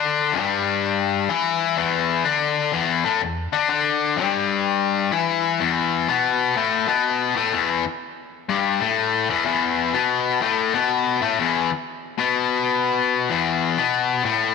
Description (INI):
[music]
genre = rock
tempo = 125 BPM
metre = 4/4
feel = swing 66% on 8ths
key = unclear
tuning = A4 = 444 Hz
[part]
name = distorted electric guitar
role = solo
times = 0.0-14.5 s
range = E2 to E4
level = -19 LUFS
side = left 7 dB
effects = overdrive
[sound]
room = moderate plate reverb, RT60 2.5 s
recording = tape saturation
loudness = -19 LUFS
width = side -5 dB against mid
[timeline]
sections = 0.0-5.6 A section; 5.6-14.5 B section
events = none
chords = 0.0 E5